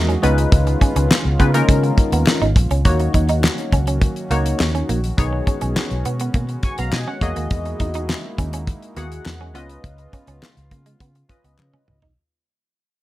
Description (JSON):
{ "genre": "early-eighties boogie funk", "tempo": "103 BPM", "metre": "4/4", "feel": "straight", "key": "unclear", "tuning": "A4 = 440 Hz", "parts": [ { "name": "funky polysynth comp", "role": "accompaniment", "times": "0.0-12.0 s", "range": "G#3 to C#6", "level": "-23 LUFS", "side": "left 2 dB", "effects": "chorus" }, { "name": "warm analog pad", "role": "sustained chords", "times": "0.0-12.1 s", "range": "Db3 to D#5", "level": "-30 LUFS", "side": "equal", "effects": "chorus" }, { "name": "vintage muted fingered electric bass", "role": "bass", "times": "0.0-12.1 s", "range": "Ab1 to Db3", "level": "-20 LUFS", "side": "equal", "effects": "none" }, { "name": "semi-hollow electric guitar", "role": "riff", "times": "0.1-12.1 s", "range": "Ab3 to Eb4", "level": "-26 LUFS", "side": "right 5 dB", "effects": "wide subtle chorus" }, { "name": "damped 70s drum kit", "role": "drums", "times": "0.1-12.2 s", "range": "hi-hat, kick drum, snare drum, toms", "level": "-18 LUFS", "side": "equal", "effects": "gated reverb" }, { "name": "group handclap", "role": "percussion", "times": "1.1-11.7 s", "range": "none", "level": "-26 LUFS", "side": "left 4 dB", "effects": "none" } ], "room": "little or no reverb", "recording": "none", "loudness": "-16 LUFS", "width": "side -16 dB against mid", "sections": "0.0-2.9 A section; 2.9-12.2 B section", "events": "fade-out 2.9-12.2; drum fill 11.6-12.2", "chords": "0.2 Db9; 2.9 Ebm7; 5.2 B69; 7.2 Emaj9#11; 9.5 Db9", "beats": "| 0.52 1.10 1.69 2.27 | 2.85 3.43 4.01 4.60 | 5.18 5.76 6.34 6.93 | 7.51 8.09 8.68 9.26 | 9.84 10.42 11.01 11.59" }